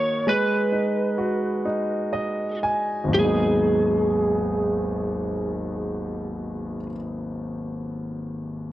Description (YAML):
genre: pop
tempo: 38-46 BPM (dotted quarters)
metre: 6/8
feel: straight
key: G# minor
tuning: A4 = 440 Hz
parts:
  - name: lightly driven lead guitar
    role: melody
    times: 0.0-6.9 s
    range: G#4 to C#5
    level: -25 LUFS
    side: right 1 dB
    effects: none
  - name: warm concert grand piano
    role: accompaniment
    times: 0.0-8.7 s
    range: G#1 to G#5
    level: -24 LUFS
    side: equal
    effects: none
room: moderate plate reverb, RT60 2.4 s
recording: worn, warbling old tape, cassette tape, warbly pitch drift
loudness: -22 LUFS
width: side -14 dB against mid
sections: 0.0-3.1 A section; 3.1-6.3 B section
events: slowing down 0.0-3.1; grand piano fill 1.6-3.1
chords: 0.3 G#m7